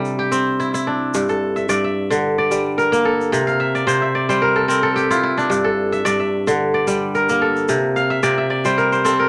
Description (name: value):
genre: west african traditional, West African string and xylophone music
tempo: 110 BPM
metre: 4/4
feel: swing 53% on 16ths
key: G dorian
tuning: A4 = 441 Hz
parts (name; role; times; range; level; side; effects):
- kora; arpeggios; 0.0-9.3 s; G2 to F5; -18 LUFS; equal; none
- tube shaker; percussion; 0.1-9.2 s; none; -36 LUFS; equal; none
room: moderate club reverb, RT60 0.6 s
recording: none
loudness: -18 LUFS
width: mono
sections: 0.0-9.3 A section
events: kora fill 3.5-5.5, 8.0-9.3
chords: 0.0 C; 1.1 Gm; 3.3 C; 5.5 Gm; 7.7 C